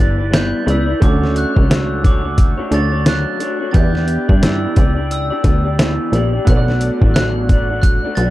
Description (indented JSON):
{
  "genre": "indie pop, bedroom pop",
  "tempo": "88 BPM",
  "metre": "4/4",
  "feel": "swing 60% on 16ths",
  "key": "D major",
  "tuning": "A4 = 438 Hz",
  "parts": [
    { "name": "glockenspiel with soft plastic mallets", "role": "melody", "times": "0.0-8.3 s", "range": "D6 to A6", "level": "-24 LUFS", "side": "right 2 dB", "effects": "lush chorus, analog delay" },
    { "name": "clear upright piano", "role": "accompaniment", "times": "0.0-8.3 s", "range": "A3 to D5", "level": "-26 LUFS", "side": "right 5 dB", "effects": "cassette tape" },
    { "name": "electric guitar through a small old amp", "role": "accompaniment", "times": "0.0-8.3 s", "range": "B2 to D5", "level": "-22 LUFS", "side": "left 2 dB", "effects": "lush chorus, warbly pitch drift" },
    { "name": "plucky analog bass", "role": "bass", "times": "0.0-8.3 s", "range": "G1 to G2", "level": "-18 LUFS", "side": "equal", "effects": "none" },
    { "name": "trip hop sampler-style drum kit", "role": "drums", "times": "0.3-8.3 s", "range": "hi-hat, kick drum, snare drum", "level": "-14 LUFS", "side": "equal", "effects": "none" }
  ],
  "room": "little or no reverb",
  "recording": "dark, warm production",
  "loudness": "-13 LUFS",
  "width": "side -16 dB against mid",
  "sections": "0.0-8.3 A section",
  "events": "none",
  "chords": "0.0 G6; 1.0 Dmaj7; 3.7 Em7; 6.5 Bm7"
}